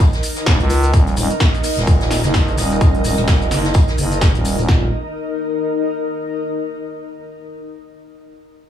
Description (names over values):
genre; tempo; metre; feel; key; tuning
bass house; 128 BPM; 4/4; swing 57% on 16ths; Eb minor; A4 = 440 Hz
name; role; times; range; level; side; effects
big-room dance drum kit; drums; 0.0-4.8 s; kick drum, snare drum; -14 LUFS; equal; none
big-room dance drum kit; drums; 0.0-4.7 s; hi-hat, snare drum; -24 LUFS; equal; none
jazz brush drum kit; drums; 0.0-4.6 s; hi-hat, snare drum, tambourine; -28 LUFS; left 2 dB; high-pass filter on hats, high-pass filter on snare, high-pass filter on perc, high-pass filter on room
shekere; percussion; 0.0-4.7 s; none; -32 LUFS; left 3 dB; none
granular cloud pad; texture; 0.0-6.5 s; Eb4 to Eb5; -23 LUFS; left 1 dB; built-in reverb, sidechain pumping
growling FM bass; bass; 0.5-4.9 s; Eb1 to Db2; -18 LUFS; equal; tube saturation, sidechain pumping
room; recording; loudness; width
light reverb, small room ambience; none; -14 LUFS; side -10 dB against mid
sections
0.0-4.7 A section; 4.7-6.6 B section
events
filter sweep on FM bass 0.0-4.7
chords
0.0 Eb5